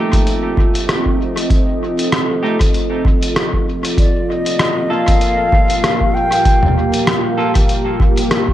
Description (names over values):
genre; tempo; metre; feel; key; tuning
ambient dub; 97 BPM; 4/4; swing 56% on 16ths; G minor; A4 = 439 Hz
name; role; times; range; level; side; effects
deep dark ambient pad; sustained chords; 0.0-8.5 s; Bb3 to F5; -18 LUFS; right 1 dB; chorus, built-in reverb
semi-hollow electric guitar; stabs; 0.0-7.5 s; A3 to A4; -24 LUFS; right 2 dB; wide subtle chorus, dub echo
electronic kick drum; drums; 0.1-8.5 s; none; -15 LUFS; equal; none
lo-fi sampler-style drum kit; drums; 0.1-8.4 s; hi-hat, rim click, toms; -20 LUFS; equal; dub echo
reedy concert flute; melody; 4.0-6.8 s; D5 to G5; -19 LUFS; left 1 dB; dub echo
room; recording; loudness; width
light reverb, digital ambience; echo-heavy mix; -13 LUFS; side -13 dB against mid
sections
0.0-4.0 A section; 4.0-8.5 B section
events
none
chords
0.0 F7; 4.0 Gm7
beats
0.27 0.89 | 1.50 2.12 2.74 3.36 | 3.98 4.60 5.21 5.83 | 6.45 7.07 7.69 8.31